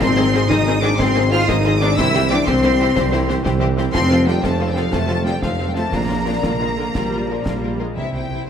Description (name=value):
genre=cinematic, heroic adventure film score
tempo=122 BPM (dotted quarters)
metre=12/8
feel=straight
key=unclear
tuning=A4 = 440 Hz
part: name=rich studio violin section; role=melody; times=0.0-8.5 s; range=C5 to F6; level=-24 LUFS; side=left 1 dB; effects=none
part: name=rich symphonic violin section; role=second line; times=0.0-8.5 s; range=C4 to C5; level=-26 LUFS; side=left 4 dB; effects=none
part: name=rich symphonic viola section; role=accompaniment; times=0.0-8.0 s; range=D3 to D4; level=-26 LUFS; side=equal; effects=none
part: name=mellow French horn section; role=sustained chords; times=0.0-7.8 s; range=F3 to F4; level=-23 LUFS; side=left 4 dB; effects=none
part: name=concert harp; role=arpeggios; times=0.0-8.5 s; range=F2 to F5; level=-27 LUFS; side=left 6 dB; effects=none
part: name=mellow tuba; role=bass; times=0.0-7.9 s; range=F1 to C2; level=-24 LUFS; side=right 3 dB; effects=none
part: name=rich symphonic cello section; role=bass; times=0.0-8.5 s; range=C3 to F4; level=-25 LUFS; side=right 2 dB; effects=none
part: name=rich symphonic double bass section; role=bass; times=0.0-8.5 s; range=Ab1 to F2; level=-24 LUFS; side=right 2 dB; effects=none
part: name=concert snare drum, clash cymbals and concert bass drum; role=drums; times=0.0-7.6 s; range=none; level=-26 LUFS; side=equal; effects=none
part: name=timpani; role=percussion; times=8.0-8.4 s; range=C3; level=-28 LUFS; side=right 2 dB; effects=none
room=wet scoring stage reverb, RT60 1.5 s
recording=none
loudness=-15 LUFS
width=side -8 dB against mid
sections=0.0-8.0 A section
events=none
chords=0.0 Ab; 2.0 C; 3.9 F; 5.9 Bb; 8.0 C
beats=| 0.02 0.51 1.00 1.49 | 1.98 2.47 2.96 3.45 | 3.94 4.43 4.92 5.42 | 5.93 6.44 6.95 7.45 | 7.96 8.46